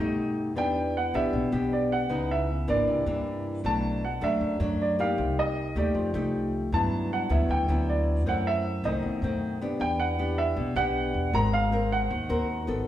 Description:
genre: bossa nova.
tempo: 156 BPM.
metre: 4/4.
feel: straight.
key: unclear.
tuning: A4 = 444 Hz.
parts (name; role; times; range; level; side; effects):
warm baby grand piano; melody; 0.0-12.6 s; D5 to A#5; -29 LUFS; right 2 dB; none.
nylon-string guitar; accompaniment; 0.0-12.9 s; F#2 to A#4; -28 LUFS; left 1 dB; none.
upright bass; bass; 0.0-12.9 s; G#1 to G2; -30 LUFS; equal; none.
room: wet large studio reverb, RT60 1.4 s.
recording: band playing live in one room.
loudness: -24 LUFS.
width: side -12 dB against mid.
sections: 0.0-9.8 A section; 9.8-12.9 B section.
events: none.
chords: 0.0 Baug7; 0.6 Em7; 2.1 C#m9; 2.9 C9; 3.6 Bm7; 5.2 Cm7; 6.0 F9; 6.7 Gmaj13; 8.3 F#m7b5; 9.0 B7b9; 9.8 Em7; 11.3 G#9.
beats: 0.17 | 0.56 0.94 1.33 1.72 | 2.10 2.49 2.87 3.26 | 3.64 4.03 4.41 4.80 | 5.18 5.57 5.95 6.33 | 6.72 7.10 7.49 7.87 | 8.26 8.64 9.03 9.41 | 9.80 10.18 10.57 10.95 | 11.34 11.72 12.10 12.49 | 12.87.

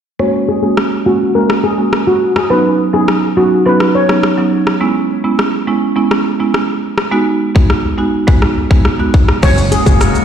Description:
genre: dancehall.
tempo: 104 BPM.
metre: 4/4.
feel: straight.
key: unclear.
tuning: A4 = 440 Hz.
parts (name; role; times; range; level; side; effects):
steel pan; melody; 0.2-4.1, 9.4-10.0 s; F#4 to C#5; -14 LUFS; left 2 dB; low-pass filter, digital delay.
marimba with medium mallets; accompaniment; 0.2-10.1 s; F#3 to F#4; -14 LUFS; right 3 dB; low-pass filter.
island pop drum kit; drums; 0.8-10.2 s; crash cymbal, hi-hat, kick drum, rim click, shaker; -15 LUFS; left 1 dB; overdrive.
glassy FM pad; sustained chords; 9.7-10.2 s; C#3 to F#4; -17 LUFS; left 2 dB; ensemble chorus, built-in reverb.
fretless electric bass; bass; 9.4-10.1 s; F#1; -14 LUFS; equal; none.
bongos; percussion; 9.4-9.6 s; none; -28 LUFS; left 6 dB; none.
room: moderate digital room reverb, RT60 1.1 s.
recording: played on a big sound system in a bare room, stone room reverb.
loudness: -10 LUFS.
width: side -8 dB against mid.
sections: 0.2-9.4 A section.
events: filter sweep 0.2-9.4.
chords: 0.2 F#add9; 2.5 Badd9; 4.8 C#m7; 7.1 G#m7; 9.4 F#add9.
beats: | 0.20 0.78 1.35 1.93 | 2.51 3.08 3.66 4.24 | 4.82 5.39 5.97 6.55 | 7.12 7.70 8.28 8.85 | 9.43 10.01.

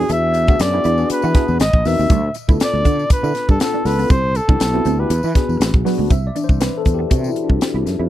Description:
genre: polished 1980s jazz-funk pop.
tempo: 120 BPM.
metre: 4/4.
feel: swing 54% on 16ths.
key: unclear.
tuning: A4 = 439 Hz.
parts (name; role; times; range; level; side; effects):
breathy flugelhorn; melody; 0.0-5.7 s; G#4 to E5; -20 LUFS; equal; tape echo.
tine electric piano; accompaniment; 0.0-8.1 s; E3 to E5; -22 LUFS; left 5 dB; lush chorus.
mellow electric guitar; riff; 0.0-8.1 s; F#3 to F#4; -25 LUFS; right 8 dB; ensemble chorus.
sustaining fretless electric bass; bass; 0.0-8.1 s; G#1 to E3; -19 LUFS; equal; none.
crisp fusion drum kit; drums; 0.1-8.0 s; hi-hat, kick drum, snare drum; -16 LUFS; equal; none.
tambourine; percussion; 0.1-8.0 s; none; -39 LUFS; left 12 dB; none.
room: little or no reverb.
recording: dry, close 1970s-style studio recording.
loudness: -14 LUFS.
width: side -13 dB against mid.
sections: 0.0-6.1 A section; 6.1-8.1 B section.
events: tine electric piano solo 6.1-8.1.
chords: 0.0 E9; 1.6 G#9; 2.1 G9/D (rootless); 4.1 Cmaj9; 5.1 E9; 6.1 Cmaj9.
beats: | 0.10 0.60 1.10 1.60 | 2.10 2.60 3.10 3.60 | 4.10 4.60 5.10 5.61 | 6.11 6.61 7.11 7.61.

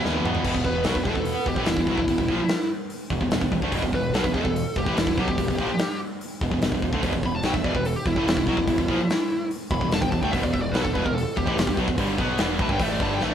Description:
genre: heavy metal.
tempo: 146 BPM.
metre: 4/4.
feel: straight.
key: E minor.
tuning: A4 = 442 Hz.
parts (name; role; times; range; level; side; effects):
high-gain lead guitar; melody; 0.0-13.3 s; E4 to B5; -27 LUFS; equal; distortion.
high-gain distorted guitar; riff; 0.0-13.3 s; E2 to B3; -30 LUFS; left 7 dB; distortion.
high-gain distorted guitar; riff; 0.0-13.3 s; E2 to B3; -27 LUFS; right 5 dB; distortion.
scooped high-gain guitar; riff; 0.0-0.7 s; E2 to B3; -33 LUFS; left 1 dB; distortion.
fuzz picked electric bass; bass; 0.0-13.3 s; E1 to E2; -31 LUFS; left 1 dB; overdrive.
big rock drum kit; drums; 0.1-13.3 s; crash cymbal, hi-hat, kick drum, snare drum, toms; -26 LUFS; equal; none.
room: moderate stone room reverb, RT60 1.0 s.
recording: band playing live in one room.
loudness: -21 LUFS.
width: side -9 dB against mid.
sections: 0.5-13.3 A section.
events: drum fill 0.0-0.5; lead electric guitar solo 0.5-13.3.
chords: 0.5 Em.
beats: 0.04 | 0.45 0.86 1.27 1.68 | 2.09 2.50 2.91 3.32 | 3.73 4.15 4.56 4.97 | 5.38 5.79 6.21 6.62 | 7.03 7.44 7.86 8.27 | 8.68 9.09 9.51 9.92 | 10.33 10.74 11.15 11.56 | 11.98 12.39 12.80 13.21.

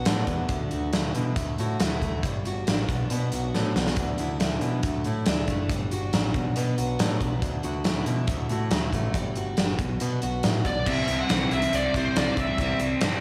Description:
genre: quiet-loud alternative rock.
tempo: 139 BPM.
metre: 4/4.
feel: straight.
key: D major.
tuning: A4 = 440 Hz.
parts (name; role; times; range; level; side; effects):
picked steel-string acoustic guitar; arpeggios; 0.0-13.2 s; B2 to F#4; -33 LUFS; equal; slapback echo.
growling picked electric bass; bass; 0.0-13.2 s; F#1 to B2; -31 LUFS; equal; overdrive.
big rock drum kit; drums; 0.1-13.1 s; crash cymbal, hi-hat, kick drum, snare drum; -30 LUFS; equal; none.
smooth overdriven lead guitar; melody; 10.7-12.8 s; C5 to F#5; -30 LUFS; equal; slapback echo.
crunchy overdriven guitar; riff; 10.9-13.2 s; C3 to C4; -30 LUFS; equal; slapback echo.
room: moderate lush hall reverb, RT60 1.6 s, small room ambience.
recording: big arena sound.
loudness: -26 LUFS.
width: mono.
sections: 0.0-10.9 A section; 10.9-13.2 B section.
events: drum fill 3.5-4.0.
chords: 0.5 Dadd9; 2.2 G5; 2.9 Bm; 4.0 Dadd9; 5.7 G5; 6.3 Bm; 7.4 Dadd9; 9.1 G5; 9.8 Bm; 10.9 C.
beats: 0.06 | 0.49 0.93 1.37 1.80 | 2.24 2.67 3.11 3.54 | 3.97 4.41 4.84 5.27 | 5.70 6.13 6.57 7.00 | 7.43 7.86 8.29 8.72 | 9.15 9.58 10.01 10.44 | 10.87 11.30 11.73 12.16 | 12.59 13.02.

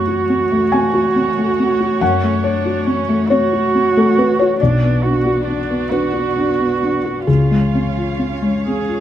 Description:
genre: neoclassical piano and strings.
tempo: 43-47 BPM (dotted quarters).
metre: 6/8.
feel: rubato.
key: F# harmonic minor.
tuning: A4 = 440 Hz.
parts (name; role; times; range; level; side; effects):
muted cello; second line; 0.0-9.0 s; C#4 to G#4; -19 LUFS; right 5 dB; none.
felt-muted upright piano; accompaniment; 0.0-9.0 s; B1 to G#5; -16 LUFS; left 2 dB; none.
muted chamber string section; sustained chords; 0.0-9.0 s; A3 to E#5; -26 LUFS; equal; none.
room: moderate studio reverb, RT60 0.8 s.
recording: band playing live in one room.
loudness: -14 LUFS.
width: side -11 dB against mid.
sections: 0.0-9.0 A section.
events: none.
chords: 0.0 F#madd9; 4.6 Bm; 7.3 C#.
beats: 0.72 | 2.01 3.30 | 4.59 5.90 | 7.28 8.66.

